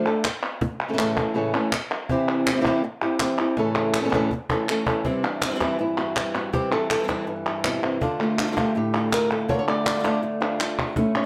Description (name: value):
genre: flamenco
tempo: 162 BPM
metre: 4/4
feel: straight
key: unclear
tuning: A4 = 441 Hz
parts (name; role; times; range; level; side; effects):
- flamenco guitar; melody; 0.0-11.3 s; G2 to E5; -26 LUFS; equal; none
- cajon; percussion; 0.1-11.2 s; none; -34 LUFS; equal; none
- palmas hand claps; percussion; 0.1-11.3 s; none; -30 LUFS; equal; none
- flamenco guitar; stabs; 5.0-11.0 s; C3 to F4; -32 LUFS; equal; slapback echo
room: moderate studio reverb, RT60 0.6 s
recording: none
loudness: -24 LUFS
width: mono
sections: 0.0-5.1 A section; 5.1-11.3 B section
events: drum fill 3.6-5.1, 10.0-11.0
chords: 0.0 D5; 0.6 A; 2.1 C; 3.6 A; 5.1 C; 8.0 Dm